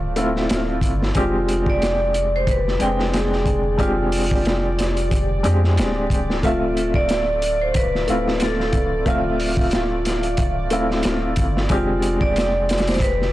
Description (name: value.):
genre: trip hop.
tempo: 91 BPM.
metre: 4/4.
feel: swing 55% on 16ths.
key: D dorian.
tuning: A4 = 440 Hz.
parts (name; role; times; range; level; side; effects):
warm upright piano; accompaniment; 0.0-13.3 s; Ab3 to G5; -23 LUFS; equal; tremolo, tape echo.
soft dub sub bass; bass; 0.0-13.3 s; D1 to F2; -24 LUFS; equal; transformer saturation.
bowed-like drone; texture; 0.0-13.3 s; D5; -34 LUFS; equal; built-in reverb.
crunchy breakbeat drum kit; drums; 0.2-13.3 s; hi-hat, kick drum, snare drum; -23 LUFS; equal; none.
vibraphone with medium hard mallets; melody; 1.2-13.3 s; F4 to D5; -23 LUFS; right 1 dB; vintage 12-bit sampler grit, tape echo.
room: light reverb.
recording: blown-out, overdriven recording, vinyl crackle, overdrive.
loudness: -17 LUFS.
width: side -15 dB against mid.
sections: 0.0-13.3 A section.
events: none.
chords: 0.0 Dm7; 1.2 Fm6; 6.4 Dm7; 11.7 Fm6.